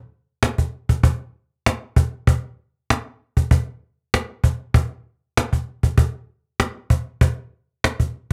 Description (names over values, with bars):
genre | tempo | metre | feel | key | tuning
blues | 97 BPM | 4/4 | swing 54% on 16ths | none | none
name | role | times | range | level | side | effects
cajon | drums | 0.4-8.3 s | none | -19 LUFS | equal | none
room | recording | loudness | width
light reverb | dry, close 1970s-style studio recording | -22 LUFS | mono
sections
0.0-8.3 A section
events
none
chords
none